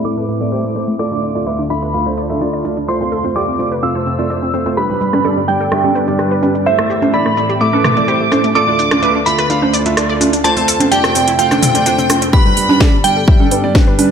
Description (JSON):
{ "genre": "progressive house", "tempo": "127 BPM", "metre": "4/4", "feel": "straight", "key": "G mixolydian", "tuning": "A4 = 440 Hz", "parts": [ { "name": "glassy synth bell", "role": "melody", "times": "0.0-13.5 s", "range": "E5 to E6", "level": "-18 LUFS", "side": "right 1 dB", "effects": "chorus, phaser, sidechain pumping, tape echo" }, { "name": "clear studio violin section", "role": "second line", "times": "0.0-13.5 s", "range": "E5 to E6", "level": "-24 LUFS", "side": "equal", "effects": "sidechain pumping, digital delay" }, { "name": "airy breathy pad", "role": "sustained chords", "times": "0.0-14.1 s", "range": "D2 to E5", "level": "-22 LUFS", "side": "left 1 dB", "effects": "chorus, sidechain pumping" }, { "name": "wide unison pluck", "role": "arpeggios", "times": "0.0-14.1 s", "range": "G3 to D5", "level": "-21 LUFS", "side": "left 1 dB", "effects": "sidechain pumping, digital delay" }, { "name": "house drum kit", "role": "drums", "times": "0.0-14.1 s", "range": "hi-hat, shaker, snare drum", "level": "-20 LUFS", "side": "equal", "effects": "sidechain pumping on hats, small room ambience, sidechain pumping on perc, sidechain pumping on cymbals" }, { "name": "warm grand piano", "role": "stabs", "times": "0.1-14.1 s", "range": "G3 to F5", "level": "-19 LUFS", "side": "right 2 dB", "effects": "sidechain pumping, low-pass filter, digital delay" }, { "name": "punchy analog drum machine", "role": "percussion", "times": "5.1-14.1 s", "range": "congas, rim click, toms", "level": "-17 LUFS", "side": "right 2 dB", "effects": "sidechain pumping on snare, small room ambience, sidechain pumping on perc, sidechain pumping on toms" }, { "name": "electronic kick drum", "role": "drums", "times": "12.3-13.8 s", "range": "none", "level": "-10 LUFS", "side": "left 1 dB", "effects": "small room ambience" } ], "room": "light reverb", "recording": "low-pass filter", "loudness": "-12 LUFS", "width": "side -7 dB against mid", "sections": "0.0-12.3 A section; 12.3-14.1 B section", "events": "filter sweep on synth pluck 0.0-12.3; filter sweep on grand piano 0.0-12.3; filter sweep 0.0-12.3; build-up 12.3-14.1", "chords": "0.0 Am; 1.0 Dm; 2.9 F; 4.8 G; 6.7 Am; 8.6 Dm; 10.4 F; 12.3 G", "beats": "0.05 0.52 | 0.99 1.47 1.94 2.41 | 2.88 3.36 3.83 4.30 | 4.77 5.25 5.72 6.19 | 6.66 7.14 7.61 8.08 | 8.55 9.03 9.50 9.97 | 10.44 10.91 11.39 11.86 | 12.33 12.80 13.28 13.75" }